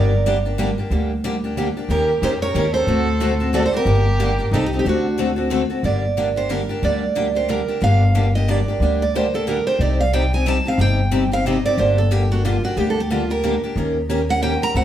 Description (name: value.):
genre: acoustic string swing (jazz manouche).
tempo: 182 BPM.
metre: 3/4.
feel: swing 60% on 8ths.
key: G minor.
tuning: A4 = 440 Hz.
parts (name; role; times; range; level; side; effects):
picked steel-string acoustic guitar; melody; 0.0-14.8 s; F4 to Bb5; -22 LUFS; right 3 dB; none.
dark violin; second line; 0.0-5.5 s; D4 to Bb4; -27 LUFS; right 2 dB; none.
picked plugged-in steel-string acoustic guitar; accompaniment; 0.0-14.8 s; C3 to Bb4; -27 LUFS; right 1 dB; none.
picked steel-string acoustic guitar; accompaniment; 0.0-14.8 s; C3 to Bb4; -24 LUFS; left 4 dB; none.
upright bass; bass; 0.0-14.8 s; G1 to F2; -20 LUFS; equal; none.
room: wet studio reverb, RT60 0.9 s.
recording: heard from further back in the room.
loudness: -17 LUFS.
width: side -11 dB against mid.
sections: 0.0-5.8 A section; 5.8-14.8 B section.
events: steel-string acoustic guitar solo 5.8-14.8.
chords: 0.0 Gm; 1.9 Eb7; 2.9 D7; 3.9 Gm; 4.5 Cm; 4.8 D7; 5.8 Gm; 9.8 Cm; 11.8 Gm; 13.8 Eb7.